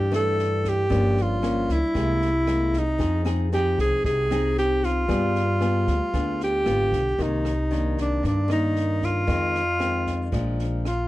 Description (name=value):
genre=bossa nova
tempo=115 BPM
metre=4/4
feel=straight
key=C minor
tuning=A4 = 440 Hz
part: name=breathy alto saxophone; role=melody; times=0.0-11.1 s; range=D4 to A4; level=-24 LUFS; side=equal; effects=none
part: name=nylon-string guitar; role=accompaniment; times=0.0-11.1 s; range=F2 to Ab4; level=-28 LUFS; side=left 2 dB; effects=none
part: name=upright bass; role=bass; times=0.0-11.1 s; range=G1 to G2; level=-26 LUFS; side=equal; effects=none
part: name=compact cocktail drum kit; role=drums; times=0.1-11.0 s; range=kick drum, rim click, snare drum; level=-34 LUFS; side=right 1 dB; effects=none
room=small room ambience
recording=dry, close 1970s-style studio recording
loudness=-21 LUFS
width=side -16 dB against mid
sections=0.0-7.2 A section; 7.2-11.1 B section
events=none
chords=0.0 C69 (rootless); 0.9 Gm7b5; 2.0 Caug7; 3.0 Fm7; 5.1 G7b9; 7.2 Cm9; 9.3 Fm7; 10.3 Bb7